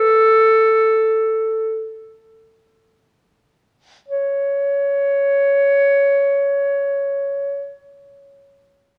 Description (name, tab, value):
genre	classical, free, expressive piece for unaccompanied clarinet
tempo	free time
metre	none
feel	none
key	unclear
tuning	A4 = 441 Hz
part	bright clarinet	solo	0.0-7.8 s	A4 to C#5	-17 LUFS	equal	none
room	light reverb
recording	worn, warbling old tape, cassette tape, warbly pitch drift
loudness	-17 LUFS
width	mono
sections	0.0-4.1 A section; 4.1-9.0 B section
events	slowing down 0.0-4.1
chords	none